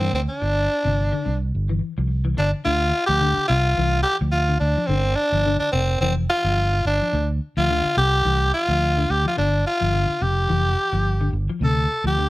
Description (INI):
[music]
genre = afrobeat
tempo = 107 BPM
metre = 4/4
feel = swing 54% on 16ths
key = D minor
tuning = A4 = 439 Hz
[part]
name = breathy tenor saxophone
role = melody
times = 0.0-12.3 s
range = C4 to A4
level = -21 LUFS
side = equal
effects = none
[part]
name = semi-hollow electric guitar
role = arpeggios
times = 0.0-12.3 s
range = C3 to F3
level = -27 LUFS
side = left 4 dB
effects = ensemble chorus, slapback echo
[part]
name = fingered electric bass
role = bass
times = 0.0-12.3 s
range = F1 to D2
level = -22 LUFS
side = equal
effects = none
[sound]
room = light reverb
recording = none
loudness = -18 LUFS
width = side -18 dB against mid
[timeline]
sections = 0.0-2.7 A section; 2.7-12.3 B section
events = none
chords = 0.4 Gsus4; 2.7 Dm7; 4.9 G7sus4; 7.1 Dm7; 9.4 G7(no3); 11.6 Dm7